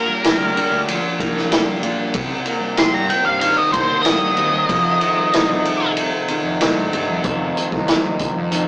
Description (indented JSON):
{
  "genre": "psychedelic rock",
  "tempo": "94 BPM",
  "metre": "4/4",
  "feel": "straight",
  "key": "unclear",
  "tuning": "A4 = 436 Hz",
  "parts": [
    { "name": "octave-fuzz lead guitar", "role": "melody", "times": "0.0-5.9 s", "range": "Bb4 to C6", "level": "-17 LUFS", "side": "equal", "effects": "wah, distortion" },
    { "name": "pedal harmonium", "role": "sustained chords", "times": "0.0-8.7 s", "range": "F3 to G4", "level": "-27 LUFS", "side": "equal", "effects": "none" },
    { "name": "electric guitar through a small old amp", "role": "riff", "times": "0.0-8.7 s", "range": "F2 to G4", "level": "-24 LUFS", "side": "equal", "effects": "none" },
    { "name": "congas", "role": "percussion", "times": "0.1-8.4 s", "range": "none", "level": "-35 LUFS", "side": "equal", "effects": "none" },
    { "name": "vintage drum kit", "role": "drums", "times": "0.2-8.7 s", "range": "hi-hat, kick drum, ride cymbal, snare drum", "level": "-19 LUFS", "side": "equal", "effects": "none" },
    { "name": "fuzz fingered electric bass", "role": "bass", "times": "0.4-8.6 s", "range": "F1 to C3", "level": "-27 LUFS", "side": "equal", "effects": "overdrive" }
  ],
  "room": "moderate studio reverb, RT60 0.7 s",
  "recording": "rough rehearsal-room recording, tube saturation, small speaker sound",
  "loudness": "-15 LUFS",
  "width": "side -29 dB against mid",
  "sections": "0.0-7.2 A section; 7.2-8.7 B section",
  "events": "lead electric guitar solo 0.0-7.2",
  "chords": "0.0 Gm7; 2.1 Cm7; 4.7 F7"
}